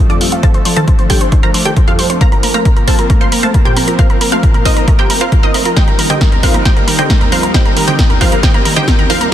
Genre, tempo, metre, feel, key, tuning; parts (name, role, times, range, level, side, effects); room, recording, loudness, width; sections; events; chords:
uplifting trance; 135 BPM; 4/4; straight; A4 = 440 Hz
wide unison pluck; melody; 0.0-9.3 s; D4 to C6; -17 LUFS; right 1 dB; phaser, sidechain pumping, ping-pong delay
wide unison pluck; second line; 0.0-9.3 s; F5 to C7; -21 LUFS; equal; sidechain pumping, ping-pong delay
supersaw pad; sustained chords; 0.0-9.3 s; F3 to Bb4; -20 LUFS; equal; sidechain pumping
wide unison pluck; arpeggios; 0.0-9.3 s; Eb2 to Bb4; -19 LUFS; right 1 dB; flanger, sidechain pumping, ping-pong delay
punchy analog drum machine; drums; 0.1-9.3 s; hi-hat, snare drum; -18 LUFS; equal; sidechain pumping on hats
electronic kick drum; drums; 0.4-9.0 s; -11 LUFS; equal
light reverb; dense, heavily limited modern master; -9 LUFS; side -11 dB against mid
0.0-9.3 A section
build-up 0.0-9.3; filter sweep on synth pluck 0.0-9.3; filter sweep on synth arpeggio sound 0.0-9.3; drum fill 5.8-9.3
0.0 F; 2.2 Bbsus2; 5.8 Eb6